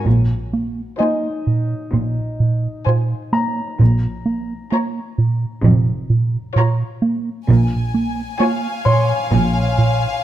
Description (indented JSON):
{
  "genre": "cinematic, suspense film score",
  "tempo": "65 BPM",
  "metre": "4/4",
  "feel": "straight",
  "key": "unclear",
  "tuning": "A4 = 440 Hz",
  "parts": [
    { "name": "clear baby grand piano", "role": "texture", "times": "0.0-10.2 s", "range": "Eb4 to C6", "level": "-24 LUFS", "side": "left 3 dB", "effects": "none" },
    { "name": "rubbery square bass", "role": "riff", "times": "0.1-10.1 s", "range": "Bb2 to Bb3", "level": "-18 LUFS", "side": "right 2 dB", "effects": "none" },
    { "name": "dark symphonic double bass section", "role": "bass", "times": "0.1-10.1 s", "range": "F1 to Bb1", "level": "-22 LUFS", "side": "right 1 dB", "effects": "none" },
    { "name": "warm symphonic cello section", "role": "bass", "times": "0.1-10.1 s", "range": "F2 to Bb2", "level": "-22 LUFS", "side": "equal", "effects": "none" },
    { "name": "warm symphonic violin section", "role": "melody", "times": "1.0-9.1 s", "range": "Ab5 to Bb5", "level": "-28 LUFS", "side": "left 4 dB", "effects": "none" },
    { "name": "warm symphonic violin section", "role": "second line", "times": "1.0-9.1 s", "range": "C5 to Db5", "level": "-27 LUFS", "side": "left 1 dB", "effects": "none" },
    { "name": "rich studio viola section", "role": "accompaniment", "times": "1.0-9.1 s", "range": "F4", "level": "-30 LUFS", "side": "right 2 dB", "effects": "none" },
    { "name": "warm symphonic violin section", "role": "texture", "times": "7.5-10.2 s", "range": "F5 to Ab5", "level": "-24 LUFS", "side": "left 3 dB", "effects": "none" }
  ],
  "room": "light reverb",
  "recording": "close, detailed microphones",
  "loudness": "-16 LUFS",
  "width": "side -12 dB against mid",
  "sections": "0.1-10.2 A section",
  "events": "none",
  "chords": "0.1 Ab6/Bb; 3.8 Bbm; 7.5 Db/Bb",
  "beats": "| 0.06 0.99 1.93 2.87 | 3.80 4.72 5.64 6.56 | 7.48 8.40 9.31"
}